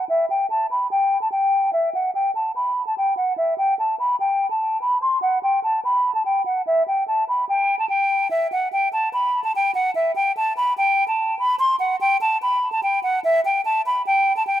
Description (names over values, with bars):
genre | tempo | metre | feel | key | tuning
hip hop | 146 BPM | 4/4 | half-time | unclear | A4 = 442 Hz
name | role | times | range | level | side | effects
hollow concert flute | melody | 0.0-14.6 s | E5 to C6 | -18 LUFS | equal | low-pass filter, analog delay
room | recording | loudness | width
light reverb, small room ambience | echo-heavy mix | -18 LUFS | side -11 dB against mid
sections
0.0-14.6 A section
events
filter sweep on flute 0.0-8.3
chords
none